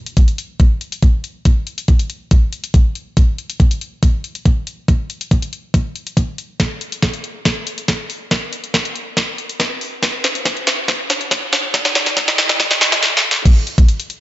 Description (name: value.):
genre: future bass.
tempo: 140 BPM.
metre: 4/4.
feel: half-time.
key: none.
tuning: none.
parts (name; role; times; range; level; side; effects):
trap drum kit; drums; 0.1-14.2 s; crash cymbal, hi-hat, snare drum; -17 LUFS; equal; high-pass filter on snare, studio reverb, high-pass filter on toms, high-pass filter on hats, high-pass filter on cymbals.
electronic kick drum; drums; 0.2-13.9 s; none; -12 LUFS; equal; studio reverb.
room: light reverb.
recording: dark, warm production, high-pass filter, nothing above 7.8 kHz.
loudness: -14 LUFS.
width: side -15 dB against mid.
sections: 0.0-13.5 A section.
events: build-up 0.0-13.5; filter sweep 0.0-13.5; drum fill 6.6-13.0, 13.0-13.5.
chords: none.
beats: 0.17 0.60 1.03 | 1.46 1.88 2.31 2.74 | 3.17 3.60 4.03 4.46 | 4.88 5.31 5.74 6.17 | 6.60 7.03 7.46 7.88 | 8.31 8.74 9.17 9.60 | 10.03 10.46 10.88 11.31 | 11.74 12.17 12.60 13.03 | 13.46 13.88.